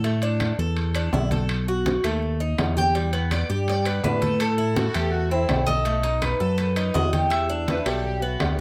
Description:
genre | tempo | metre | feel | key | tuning
latin, Cuban son and guajira | 165 BPM | 4/4 | straight | E minor | A4 = 442 Hz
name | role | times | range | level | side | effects
Cuban tres | arpeggios | 0.0-8.6 s | G3 to A4 | -30 LUFS | equal | none
fat analog bass | bass | 0.0-8.6 s | B1 to A2 | -27 LUFS | equal | none
congas | percussion | 0.0-8.6 s | none | -32 LUFS | equal | none
timbales | percussion | 0.0-8.6 s | none | -34 LUFS | equal | none
claves | percussion | 0.4-8.6 s | none | -42 LUFS | equal | none
Cuban tres | melody | 2.8-8.5 s | A4 to G5 | -29 LUFS | equal | none
warm studio violin section | second line | 4.8-8.6 s | E4 to B4 | -33 LUFS | equal | none
room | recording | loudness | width
light reverb | none | -23 LUFS | mono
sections
0.0-8.6 A section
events
none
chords
0.0 Asus4; 1.5 B7; 3.0 Em7; 4.4 Am; 5.9 B7; 7.3 Em7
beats
| 0.04 0.41 0.77 1.13 | 1.50 1.86 2.22 2.59 | 2.95 3.31 3.68 4.04 | 4.40 4.77 5.13 5.50 | 5.86 6.22 6.59 6.95 | 7.31 7.68 8.04 8.40

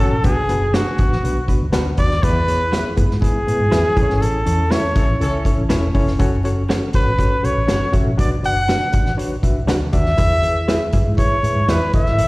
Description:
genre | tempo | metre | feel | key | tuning
uptempo 1960s-style soul | 121 BPM | 4/4 | straight | E mixolydian | A4 = 442 Hz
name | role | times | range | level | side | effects
clear trumpet | melody | 0.0-12.3 s | F#4 to F#5 | -20 LUFS | equal | slapback echo
barky reed electric piano | accompaniment | 0.0-12.3 s | A2 to E5 | -24 LUFS | left 2 dB | overdrive, fast tremolo, slapback echo
vintage muted fingered electric bass | bass | 0.0-12.3 s | E1 to A2 | -20 LUFS | equal | none
vintage drum kit | drums | 0.2-12.3 s | hi-hat, kick drum, snare drum | -20 LUFS | equal | none
electric guitar through a small old amp | stabs | 0.7-11.8 s | C#4 to F#5 | -25 LUFS | right 3 dB | tremolo, slapback echo
warm horn section | second line | 5.0-5.6 s | C#4 to A4 | -28 LUFS | equal | slapback echo
room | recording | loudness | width
little or no reverb | live gig heard through the venue's PA, recital hall reverb, vinyl crackle | -15 LUFS | side -22 dB against mid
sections
0.0-12.3 A section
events
band accent 4.2-6.2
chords
0.2 Bm; 2.2 E; 4.0 A; 6.2 F#m; 8.2 Bm; 10.2 E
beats
| 0.24 0.74 1.24 1.74 | 2.23 2.73 3.23 3.72 | 4.22 4.71 5.21 5.71 | 6.20 6.70 7.20 7.69 | 8.19 8.69 9.19 9.69 | 10.19 10.69 11.19 11.69 | 12.19

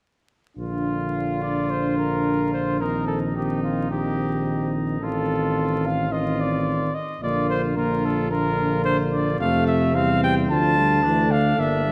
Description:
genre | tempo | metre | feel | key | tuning
classical, brass quintet | 109 BPM | 4/4 | straight | Bb major | A4 = 438 Hz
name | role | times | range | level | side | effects
clear trumpet | melody | 0.6-11.9 s | F4 to A5 | -28 LUFS | equal | none
bright trumpet | second line | 0.6-11.9 s | A3 to F4 | -34 LUFS | equal | none
dark French horn | accompaniment | 0.6-11.9 s | F3 to D4 | -30 LUFS | equal | none
mellow trombone | accompaniment | 0.6-11.9 s | C3 to E3 | -29 LUFS | equal | none
warm tuba | bass | 0.6-11.9 s | G1 to F2 | -29 LUFS | equal | none
room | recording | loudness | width
moderate scoring stage reverb, RT60 1.8 s | dark, warm production, vinyl crackle | -23 LUFS | mono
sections
0.6-11.9 A section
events
none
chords
0.6 Bb; 2.8 Cm7/Bb; 5.0 F7/A; 7.2 Bb; 9.4 F; 10.5 Dm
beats
| 0.58 1.14 1.70 2.25 | 2.81 3.36 3.91 4.46 | 5.01 5.56 6.11 6.66 | 7.21 7.75 8.30 8.85 | 9.40 9.95 10.49 11.04 | 11.58

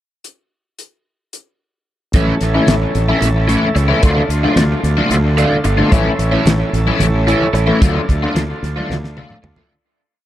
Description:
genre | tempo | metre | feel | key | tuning
psychedelic rock | 222 BPM (eighths) | 7/8 | straight | unclear | A4 = 441 Hz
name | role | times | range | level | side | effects
damped 70s drum kit | drums | 0.2-9.7 s | hi-hat, kick drum, snare drum, toms | -17 LUFS | equal | dub echo
tonewheel organ | sustained chords | 2.1-9.7 s | A4 to A5 | -25 LUFS | right 3 dB | slow rotary speaker
overdriven electric guitar | riff | 2.1-9.7 s | D3 to F4 | -16 LUFS | left 1 dB | rotary speaker, dub echo
fuzz fingered electric bass | bass | 2.1-9.6 s | G1 to D2 | -17 LUFS | equal | overdrive
congas | percussion | 2.1-9.4 s | none | -27 LUFS | right 2 dB | none
room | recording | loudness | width
light reverb, small room reverb | echo-heavy mix | -12 LUFS | side -13 dB against mid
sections
0.2-2.1 pickup bar; 2.1-9.7 groove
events
fade-out 7.8-9.7; drum fill 8.9-9.7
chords
0.2 N.C.; 2.1 A; 4.0 Dm; 5.9 A; 7.8 Dm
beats
| 0.25 0.52 0.79 1.06 1.33 1.60 1.87 | 2.14 2.41 2.68 2.95 3.22 3.49 3.76 | 4.03 4.30 4.57 4.84 5.11 5.38 5.65 | 5.92 6.19 6.46 6.73 7.00 7.27 7.54 | 7.81 8.08 8.35 8.62 8.90 9.17 9.44

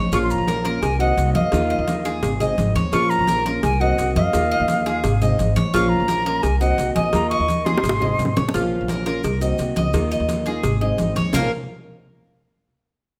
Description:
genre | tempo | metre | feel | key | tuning
latin, Cuban son and guajira | 171 BPM | 4/4 | straight | Bb minor | A4 = 440 Hz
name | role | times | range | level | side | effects
nylon-string guitar | accompaniment | 0.0-11.5 s | Bb2 to Ab4 | -29 LUFS | equal | none
Cuban tres | arpeggios | 0.0-11.5 s | Bb3 to Eb5 | -27 LUFS | equal | none
upright bass | bass | 0.0-11.5 s | Ab1 to Gb2 | -26 LUFS | equal | none
concert flute | melody | 0.1-8.4 s | F5 to Db6 | -25 LUFS | equal | none
congas | percussion | 0.1-11.4 s | none | -29 LUFS | equal | none
cowbell and bongos | percussion | 0.1-11.4 s | none | -30 LUFS | equal | none
maracas | percussion | 0.1-11.4 s | none | -43 LUFS | equal | none
room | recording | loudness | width
moderate large studio reverb, RT60 1.3 s | close, detailed microphones | -20 LUFS | mono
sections
0.0-8.5 A section; 8.5-11.3 B section; 11.3-12.7 C section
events
drum fill 7.5-8.5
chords
0.1 Bbm; 0.8 Cm7b5; 1.5 Ebsus2; 2.2 Ab; 2.9 Bbm; 3.6 Cm7b5; 4.3 Ebsus2; 5.0 Ab; 5.7 Bbm; 6.4 Cm7b5; 7.1 Ebsus2; 7.8 Ab; 8.5 Bbm; 9.2 Cm7b5; 9.9 Ebsus2; 10.6 Ab; 11.3 Bb5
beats
| 0.12 0.48 0.83 1.18 | 1.53 1.88 2.23 2.58 | 2.93 3.28 3.63 3.98 | 4.33 4.68 5.03 5.38 | 5.73 6.08 6.43 6.79 | 7.14 7.49 7.84 8.19 | 8.54 8.89 9.24 9.59 | 9.94 10.29 10.64 10.99 | 11.34

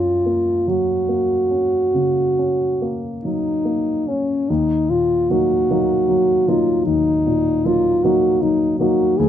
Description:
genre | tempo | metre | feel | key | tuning
classical, romantic duo for French horn and grand piano | 45-53 BPM (dotted quarters) | 12/8 | rubato | F# major, Eb minor from 4.5 s | A4 = 439 Hz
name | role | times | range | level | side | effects
dark French horn | melody | 0.0-9.3 s | C#4 to Ab4 | -17 LUFS | equal | none
dark grand piano | accompaniment | 0.0-9.3 s | D2 to Eb4 | -21 LUFS | left 1 dB | none
room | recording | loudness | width
light reverb | close, detailed microphones | -16 LUFS | side -10 dB against mid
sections
0.0-4.5 A section; 4.5-9.3 B section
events
none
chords
0.0 F#; 4.5 Ebm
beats
0.68 1.94 3.23 | 4.49 5.68 6.86 8.03 | 9.18

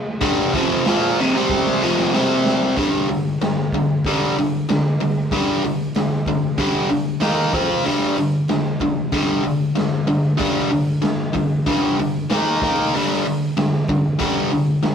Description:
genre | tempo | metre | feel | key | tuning
garage rock duo or trio | 94 BPM | 4/4 | straight | G minor | A4 = 439 Hz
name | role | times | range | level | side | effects
biting overdriven guitar | riff | 0.2-14.9 s | F2 to F4 | -18 LUFS | equal | none
raw garage drum kit | drums | 0.2-14.9 s | crash cymbal, hi-hat, kick drum, snare drum | -24 LUFS | right 1 dB | none
room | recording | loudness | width
moderate stone room reverb, RT60 1.1 s | rough rehearsal-room recording, warm saturation | -17 LUFS | side -7 dB against mid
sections
0.0-2.8 A section; 2.8-14.9 B section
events
drum fill 1.5-2.8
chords
0.0 F5; 2.1 C5; 2.8 G5; 7.2 Eb5; 7.5 F5; 7.9 G5; 12.3 Eb5; 12.9 G5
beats
| 0.23 0.86 1.50 2.13 | 2.77 3.40 4.04 4.68 | 5.31 5.95 6.59 7.22 | 7.86 8.50 9.13 9.77 | 10.40 11.04 11.67 12.31 | 12.94 13.58 14.21 14.84

